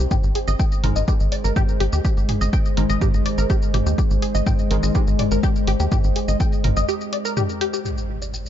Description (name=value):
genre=melodic techno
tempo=124 BPM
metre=4/4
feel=straight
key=unclear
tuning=A4 = 440 Hz
part: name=deep dark ambient pad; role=sustained chords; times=0.0-8.5 s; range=G3 to Eb5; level=-27 LUFS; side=left 1 dB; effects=chorus, built-in reverb, sidechain pumping
part: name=tight sequenced synth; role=arpeggios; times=0.0-8.4 s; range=G4 to G5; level=-27 LUFS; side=left 2 dB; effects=chorus, phaser, vintage 12-bit sampler grit, sidechain pumping, ping-pong delay
part: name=tight sequencer bass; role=bass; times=0.0-6.8 s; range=Ab1 to Eb2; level=-21 LUFS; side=equal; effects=tube saturation, sidechain pumping
part: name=electronic kick drum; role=drums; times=0.1-6.5 s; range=none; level=-21 LUFS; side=equal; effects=none
part: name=punchy analog drum machine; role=drums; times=0.1-8.5 s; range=hi-hat, shaker, toms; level=-28 LUFS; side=equal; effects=sidechain pumping on toms, sidechain pumping on perc, sidechain pumping on hats
part: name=synth brass stab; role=stabs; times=0.8-5.0 s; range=Ab2 to Ab3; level=-30 LUFS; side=equal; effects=chorus, phaser, sidechain pumping, ping-pong delay
part: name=impact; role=sound effects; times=7.9-8.5 s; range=none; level=-27 LUFS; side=equal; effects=none
room=digital ambience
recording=dark, warm production, nothing above 7.6 kHz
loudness=-18 LUFS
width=side -10 dB against mid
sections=0.0-7.9 A section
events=filter sweep on synth stab 0.0-7.9; break 6.9-7.9; impact 7.9-8.5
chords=0.1 Ab; 7.9 Gm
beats=| 0.11 0.59 1.08 1.56 | 2.05 2.53 3.01 3.50 | 3.98 4.47 4.95 5.43 | 5.92 6.40 6.88 7.37 | 7.85 8.34